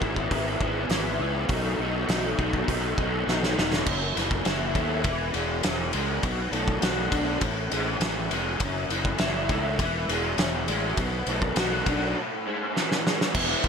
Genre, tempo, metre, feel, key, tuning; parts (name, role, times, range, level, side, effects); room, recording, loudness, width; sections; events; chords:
indie rock; 101 BPM; 4/4; straight; E major; A4 = 440 Hz
raw garage guitar; riff; 0.0-13.7 s; F#2 to F#4; -27 LUFS; left 1 dB; overdrive, ensemble chorus
fuzz fingered electric bass; bass; 0.0-13.7 s; E1 to D#2; -31 LUFS; equal; overdrive
loose indie drum kit; drums; 0.0-13.7 s; crash cymbal, hi-hat, kick drum, ride cymbal, snare drum; -27 LUFS; equal; gated reverb
light reverb, small room reverb; bright 1980s-style digital production; -24 LUFS; side -6 dB against mid
0.0-3.9 A section; 3.9-13.3 B section
drum fill 3.3-3.9, 12.8-13.3
0.0 E6/G#; 1.5 B7; 3.9 F#m7; 5.1 E; 6.2 Bm7; 7.4 A5; 8.6 F#m7; 9.8 E; 11.0 Bm7; 12.2 A5